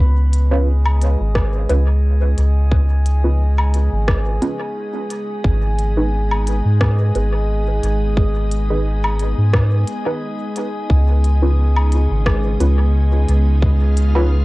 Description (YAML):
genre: ambient dub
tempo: 88 BPM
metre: 4/4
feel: swing 54% on 16ths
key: G# dorian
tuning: A4 = 440 Hz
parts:
  - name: soft additive organ-like pad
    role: sustained chords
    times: 0.2-14.4 s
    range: C#3 to C#5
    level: -30 LUFS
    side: equal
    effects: ensemble chorus, built-in reverb, cassette tape
  - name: soft dub sub bass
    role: bass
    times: 0.0-14.4 s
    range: G#1 to G#2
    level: -15 LUFS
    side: equal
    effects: none
  - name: drifting glass-harmonics texture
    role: texture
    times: 0.0-14.4 s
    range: G#3 to G#4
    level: -26 LUFS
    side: left 1 dB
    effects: chorus, built-in reverb, cassette tape
  - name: organic electronic drum kit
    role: drums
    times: 0.3-14.1 s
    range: hi-hat, rim click, woodblock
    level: -25 LUFS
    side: equal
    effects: cassette tape, dub echo
  - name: filtered dub chord stab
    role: stabs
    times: 0.5-14.4 s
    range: C#4 to B4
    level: -24 LUFS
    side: right 1 dB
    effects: phaser, analog chorus, cassette tape, dub echo
  - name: electronic kick drum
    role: drums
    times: 1.4-13.8 s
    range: none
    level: -18 LUFS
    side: equal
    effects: cassette tape
room: light reverb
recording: home recording on cassette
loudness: -15 LUFS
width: side -20 dB against mid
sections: 0.0-14.4 A section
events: fade-in on ambient pad 0.0-14.4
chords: 0.0 G#m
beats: 0.67 1.35 2.04 | 2.72 3.40 4.08 4.76 | 5.45 6.13 6.81 7.49 | 8.17 8.86 9.54 10.22 | 10.90 11.58 12.26 12.95 | 13.63 14.31